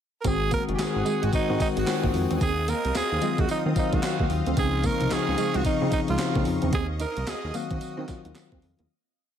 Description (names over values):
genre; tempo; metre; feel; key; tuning
R&B, new jack swing; 111 BPM; 4/4; swing 62% on 16ths; Eb dorian; A4 = 439 Hz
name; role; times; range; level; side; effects
growling tenor saxophone; melody; 0.2-8.4 s; Eb4 to Bb4; -29 LUFS; right 4 dB; ping-pong delay
bell-like tine electric piano; accompaniment; 0.2-8.9 s; Db3 to F5; -28 LUFS; left 6 dB; none
sweeping resonant pad; sustained chords; 0.2-8.9 s; C4 to Eb6; -36 LUFS; left 1 dB; chorus
electric guitar at the edge of break-up; riff; 0.2-8.9 s; Ab3 to Eb4; -33 LUFS; right 5 dB; analog chorus
fat analog bass; bass; 0.2-8.9 s; Gb1 to Eb3; -29 LUFS; right 1 dB; none
gated 80s digital drum machine; drums; 0.2-8.9 s; handclaps, hi-hat, kick drum, snare drum, tambourine; -29 LUFS; right 1 dB; gated reverb, gated reverb snare
room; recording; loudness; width
little or no reverb; none; -23 LUFS; side -9 dB against mid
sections
0.0-0.2 pickup bar; 0.2-8.9 chorus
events
fade-out 6.7-8.9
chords
0.2 Ab7; 2.4 Ebm69; 4.6 Dbmaj9; 6.7 Ebm69